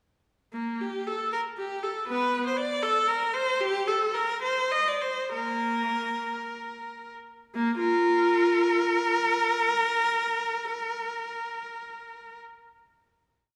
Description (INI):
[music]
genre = classical, baroque-style suite movement for unaccompanied viola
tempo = 48-82 BPM (dotted quarters)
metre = 6/8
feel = rubato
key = Bb major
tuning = A4 = 440 Hz
[part]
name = clear viola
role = solo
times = 0.5-12.4 s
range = Bb3 to Eb5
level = -27 LUFS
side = equal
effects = none
[sound]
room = wet concert hall reverb, RT60 1.7 s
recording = recorded in a church or concert hall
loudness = -27 LUFS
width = mono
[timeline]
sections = 0.5-7.5 A section; 7.5-12.2 final chord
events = slowing down 2.8-7.5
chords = none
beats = | 0.53 1.32 | 2.07 2.83 | 3.59 4.40 | 5.32 6.37 | 7.55 8.69 | 9.86 11.02